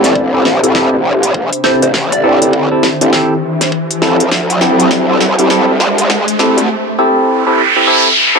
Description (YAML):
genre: glitch hop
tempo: 101 BPM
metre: 4/4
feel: swing 62% on 16ths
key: A minor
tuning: A4 = 440 Hz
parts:
  - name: plucky unison lead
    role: melody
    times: 0.0-2.7 s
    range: C5 to D5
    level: -19 LUFS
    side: equal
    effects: dub echo
  - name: barky tine electric piano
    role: stabs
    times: 0.0-8.4 s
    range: C4 to A4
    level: -13 LUFS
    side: equal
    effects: phaser, sidechain pumping, dub echo
  - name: growl bass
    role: bass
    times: 0.0-6.7 s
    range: A1 to G2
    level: -14 LUFS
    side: equal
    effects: chorus, high-pass filter
  - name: pop drum kit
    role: drums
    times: 0.0-6.7 s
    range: hi-hat, snare drum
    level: -16 LUFS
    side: equal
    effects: high-pass filter on hats, high-pass filter on snare
  - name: riser and noise sweep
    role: sound effects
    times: 0.0-8.4 s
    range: none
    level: -16 LUFS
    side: right 1 dB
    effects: none
  - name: airy breathy pad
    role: texture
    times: 0.0-6.7 s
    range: D4 to E5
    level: -21 LUFS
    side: equal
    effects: chorus, sidechain pumping
  - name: electronic kick drum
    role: drums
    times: 0.2-6.2 s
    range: none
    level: -24 LUFS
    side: equal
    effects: none
room: wet studio reverb, RT60 0.6 s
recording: dark, warm production, high-pass filter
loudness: -9 LUFS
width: side -4 dB against mid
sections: 0.0-8.4 A section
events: build-up 0.0-8.4; drum fill 0.0-6.7; riser 0.0-6.7; filter sweep 0.0-8.4; noise sweep 6.7-8.4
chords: 0.0 Am7; 4.3 D7sus4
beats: 0.16 0.75 1.35 | 1.94 2.53 3.13 3.72 | 4.32 4.91 5.50 6.10 | 6.69 7.29 7.88